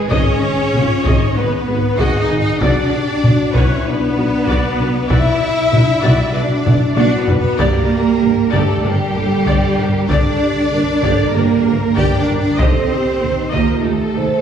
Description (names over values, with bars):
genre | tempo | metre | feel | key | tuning
cinematic, epic orchestral film score | 96 BPM | 4/4 | straight | unclear | A4 = 439 Hz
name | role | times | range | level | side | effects
warm symphonic violin section | melody | 0.0-14.4 s | G4 to G5 | -26 LUFS | left 2 dB | none
warm symphonic violin section | second line | 0.0-14.4 s | G4 to G5 | -25 LUFS | left 2 dB | none
mellow French horn section | sustained chords | 0.0-14.4 s | G3 to C5 | -23 LUFS | left 2 dB | none
clear symphonic cello section | bass | 0.0-14.4 s | G3 to G4 | -19 LUFS | right 2 dB | none
warm symphonic viola section | accompaniment | 0.1-14.2 s | G3 to D#5 | -23 LUFS | left 1 dB | none
mellow tuba | bass | 0.1-14.3 s | G1 to D#2 | -23 LUFS | right 1 dB | none
warm symphonic double bass section | bass | 0.1-14.2 s | G1 to D#2 | -22 LUFS | equal | none
taiko ensemble | drums | 0.1-14.1 s | none | -19 LUFS | equal | none
room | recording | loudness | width
wet concert hall reverb, RT60 2.1 s | heard from further back in the room | -13 LUFS | side -8 dB against mid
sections
0.0-14.4 A section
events
drum fill 6.7-7.6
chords
0.0 G#m; 2.6 Bm; 7.6 Gm; 12.6 D#